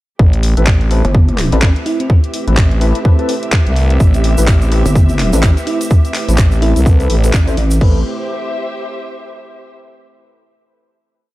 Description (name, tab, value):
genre	bass house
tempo	126 BPM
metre	4/4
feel	swing 59% on 16ths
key	A minor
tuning	A4 = 441 Hz
part	dark analog pad	sustained chords	0.2-8.0 s	A3 to B4	-25 LUFS	equal	chorus, phaser, sidechain pumping
part	growling FM bass	bass	0.2-8.0 s	A1 to C2	-12 LUFS	equal	tube saturation, sidechain pumping
part	electronic kick drum	drums	0.2-7.9 s	none	-10 LUFS	equal	none
part	muted studio string section	texture	0.2-9.7 s	C4 to E5	-26 LUFS	equal	sidechain pumping
part	garage drum kit	drums	0.3-7.9 s	crash cymbal, handclaps, hi-hat	-22 LUFS	equal	none
part	percussive organ stab	stabs	0.6-8.0 s	C4 to C5	-23 LUFS	left 2 dB	lush chorus, sidechain pumping, tape echo
part	pulsing pluck wobble bass	bass	1.0-1.7, 4.9-7.8 s	G1 to A1	-14 LUFS	equal	chorus, tube saturation, sidechain pumping
part	bell-like FM electric piano	melody	1.9-2.2, 5.7-6.8 s	C4 to E4	-23 LUFS	right 3 dB	chorus, tremolo, tape echo
part	tube shaker	percussion	4.0-7.8 s	none	-28 LUFS	right 3 dB	none
room	little or no reverb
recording	dark, warm production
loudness	-10 LUFS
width	side -17 dB against mid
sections	0.2-7.8 drop; 7.8-9.7 final chord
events	drop 0.2-7.8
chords	0.2 Amadd9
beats	| 0.19 0.67 1.15 1.62 | 2.10 2.57 3.05 3.53 | 4.00 4.48 4.96 5.43 | 5.91 6.38 6.86 7.34 | 7.81 8.29 8.76 9.24